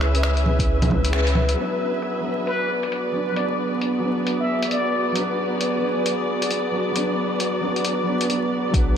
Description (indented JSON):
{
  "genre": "future garage",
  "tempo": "134 BPM",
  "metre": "4/4",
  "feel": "swing 61% on 16ths",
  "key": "B dorian",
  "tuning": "A4 = 439 Hz",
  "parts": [
    { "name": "felt-muted upright piano", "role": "accompaniment", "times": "0.0-9.0 s", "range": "F#3 to B4", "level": "-26 LUFS", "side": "right 1 dB", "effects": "ensemble chorus, sidechain pumping, diffuse ambient delay" },
    { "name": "dark studio string section", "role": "sustained chords", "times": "0.0-9.0 s", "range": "B3 to E5", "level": "-24 LUFS", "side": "left 1 dB", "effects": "vintage 12-bit sampler grit, sidechain pumping" },
    { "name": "warm sub bass", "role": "bass", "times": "0.0-1.6, 8.7-9.0 s", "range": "B1 to C#2", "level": "-21 LUFS", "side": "equal", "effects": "sidechain pumping" },
    { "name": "lo-fi sampler-style drum kit", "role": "drums", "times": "0.0-8.9 s", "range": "bongos, finger snaps, hi-hat", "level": "-26 LUFS", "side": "equal", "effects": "low-pass filter on hats, low-pass filter on snare, low-pass filter on perc, low-pass filter on room" },
    { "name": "electronic kick drum", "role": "drums", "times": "0.6-1.0, 8.7-8.8 s", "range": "none", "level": "-22 LUFS", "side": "equal", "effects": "none" },
    { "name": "drifting glass-harmonics texture", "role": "texture", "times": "2.9-9.0 s", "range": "G#4", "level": "-33 LUFS", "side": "right 2 dB", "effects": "chorus, built-in reverb" },
    { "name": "trumpet with plunger mute", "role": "melody", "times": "2.5-5.2 s", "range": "B4 to E5", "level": "-28 LUFS", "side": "left 1 dB", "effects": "vintage 12-bit sampler grit, ping-pong delay" }
  ],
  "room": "wet lush hall reverb, RT60 2.1 s",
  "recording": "dreamy mix soaked in reverb, vinyl crackle",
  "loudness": "-20 LUFS",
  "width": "side -8 dB against mid",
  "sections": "0.0-1.6 A section; 1.6-8.7 B section",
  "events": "band accent 1.1; filter sweep on drum 1.6-8.7",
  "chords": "0.0 C#m7; 1.6 Bm"
}